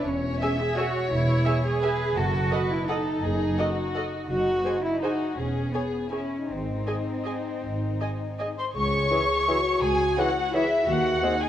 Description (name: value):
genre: classical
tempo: 150-185 BPM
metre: 3/4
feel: rubato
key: C# minor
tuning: A4 = 439 Hz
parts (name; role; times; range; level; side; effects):
- warm chamber violin section; second line; 0.0-11.5 s; D#4 to E5; -31 LUFS; left 4 dB; none
- dark chamber cello section; bass; 0.0-11.2 s; C#2 to G#4; -29 LUFS; right 1 dB; none
- warm chamber double bass section; bass; 0.1-11.2 s; E1 to D#2; -29 LUFS; right 1 dB; none
- warm chamber violin section; melody; 0.4-11.5 s; E5 to C#6; -29 LUFS; left 1 dB; none
- dark symphonic viola section; accompaniment; 0.4-11.3 s; B#3 to E5; -33 LUFS; right 1 dB; none
- small flute group; second line; 8.6-11.5 s; E5 to C#6; -31 LUFS; left 3 dB; none
- dark French horn section; sustained chords; 8.8-11.5 s; D#4 to G#4; -28 LUFS; left 1 dB; none
- warm clarinet; second line; 9.1-11.4 s; B#4 to C#5; -35 LUFS; left 1 dB; none
- warm bassoon; accompaniment; 9.1-11.4 s; E3 to G#3; -32 LUFS; equal; none
room: moderate scoring stage reverb, RT60 1.7 s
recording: worn, warbling old tape, cassette tape, warbly pitch drift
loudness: -23 LUFS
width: side -11 dB against mid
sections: 0.0-8.8 A section; 8.8-11.5 B section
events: none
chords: 0.1 C#m/E; 2.2 D#dim/F#; 4.3 G#7/F#; 5.4 C#m/E; 6.5 G#; 8.8 C#m; 10.9 G#7/D#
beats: | 0.07 0.42 0.78 | 1.12 1.47 1.82 | 2.17 2.52 2.89 | 3.23 3.59 3.95 | 4.30 4.65 5.02 | 5.37 5.73 6.11 | 6.48 6.86 7.25 | 7.62 8.00 8.39 | 8.76 9.11 9.48 | 9.82 10.18 10.54 | 10.88 11.23